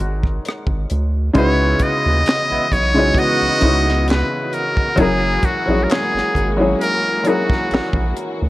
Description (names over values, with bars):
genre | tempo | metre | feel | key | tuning
R&B, neo-soul | 66 BPM | 4/4 | swing 54% on 16ths | C# dorian | A4 = 440 Hz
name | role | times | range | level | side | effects
trumpet with metal mute | melody | 0.0-8.2 s | F#4 to D#5 | -20 LUFS | equal | slapback echo
clear upright piano | accompaniment | 0.0-8.5 s | C#3 to D#5 | -20 LUFS | left 1 dB | none
rubbery square bass | bass | 0.0-8.5 s | F#1 to D#2 | -20 LUFS | equal | none
tight funk drum kit | drums | 0.2-8.4 s | handclaps, hi-hat, kick drum, rim click, snare drum | -20 LUFS | equal | none
warm studio string section | sustained chords | 1.3-8.5 s | E3 to D#5 | -26 LUFS | equal | none
mellow horn section | stabs | 1.6-4.3 s | G#3 to G#4 | -24 LUFS | right 2 dB | none
room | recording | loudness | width
small room ambience | worn, warbling old tape, cassette tape, warbly pitch drift | -15 LUFS | side -17 dB against mid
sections
0.0-1.4 A section; 1.4-8.5 B section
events
none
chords
0.0 G#7sus4; 1.4 C#m11; 5.0 F#9